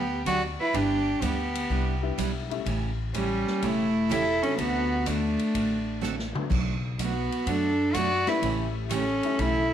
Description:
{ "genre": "country, western swing", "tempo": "125 BPM", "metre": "4/4", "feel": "swing 68% on 8ths", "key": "unclear", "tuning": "A4 = 440 Hz", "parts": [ { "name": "rich cello", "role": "melody", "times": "0.0-9.7 s", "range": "G3 to F#4", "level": "-26 LUFS", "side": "left 1 dB", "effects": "none" }, { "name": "rich fiddle", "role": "second line", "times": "0.0-9.7 s", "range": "C#4 to D5", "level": "-33 LUFS", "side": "right 10 dB", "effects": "none" }, { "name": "picked steel-string acoustic guitar", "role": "accompaniment", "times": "0.0-9.6 s", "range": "B2 to B4", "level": "-34 LUFS", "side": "right 9 dB", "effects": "none" }, { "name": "upright bass", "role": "bass", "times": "0.0-9.7 s", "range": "E1 to F#2", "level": "-32 LUFS", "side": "left 1 dB", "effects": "none" }, { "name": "swinging big-band drum kit", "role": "drums", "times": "0.3-9.5 s", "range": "crash cymbal, hi-hat, kick drum, ride cymbal, snare drum, toms", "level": "-36 LUFS", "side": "left 2 dB", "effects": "none" }, { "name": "honky-tonk upright piano", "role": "accompaniment", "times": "2.0-9.7 s", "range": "C3 to E4", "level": "-35 LUFS", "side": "left 12 dB", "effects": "none" } ], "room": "moderate echo chamber reverb, RT60 1.6 s, studio ambience", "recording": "1960s-style stereo with parts hard left and right", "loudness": "-24 LUFS", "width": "side -10 dB against mid", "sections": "0.0-9.7 A section", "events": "drum fill 6.0-6.5", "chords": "0.0 Gmaj7; 0.7 Em7/G; 2.7 A7; 4.6 D7; 6.5 Bm7; 8.4 A7" }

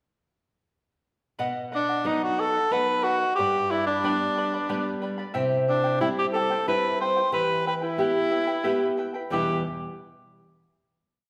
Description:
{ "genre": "andean folk, Andean ensemble", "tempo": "91 BPM", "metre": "3/4", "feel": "straight", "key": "E minor", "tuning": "A4 = 440 Hz", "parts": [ { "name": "charango", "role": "accompaniment", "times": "1.4-9.6 s", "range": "E4 to B5", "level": "-35 LUFS", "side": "equal", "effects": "none" }, { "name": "nylon-string guitar", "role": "accompaniment", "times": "1.4-9.6 s", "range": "E2 to G4", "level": "-31 LUFS", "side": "equal", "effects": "none" }, { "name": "warm cor anglais", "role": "melody", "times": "1.8-9.6 s", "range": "D4 to C5", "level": "-27 LUFS", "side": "equal", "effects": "none" } ], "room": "wet large studio reverb, RT60 1.4 s", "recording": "band playing live in one room", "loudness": "-25 LUFS", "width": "mono", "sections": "1.4-9.3 A section; 9.3-11.3 final chord", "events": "none", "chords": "1.4 B; 3.4 G; 5.4 C; 7.3 Em" }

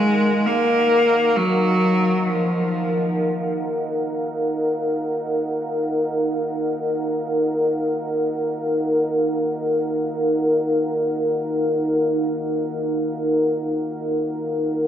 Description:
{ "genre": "ambient", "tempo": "free time", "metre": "none", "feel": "none", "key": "Eb minor", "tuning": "A4 = 440 Hz", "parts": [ { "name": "bright cello", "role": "melody", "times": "0.0-3.2 s", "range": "F3 to Bb3", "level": "-18 LUFS", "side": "equal", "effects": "analog delay" }, { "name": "dark analog pad", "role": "sustained chords", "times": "0.0-14.9 s", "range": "Eb4 to Gb5", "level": "-21 LUFS", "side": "equal", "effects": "chorus" } ], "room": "wet spring reverb, RT60 2.5 s", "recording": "echo-heavy mix", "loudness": "-19 LUFS", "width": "side -10 dB against mid", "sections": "0.0-14.9 A section", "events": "fade-in on analog synth pad 0.0-14.9", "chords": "0.0 Ebmadd9" }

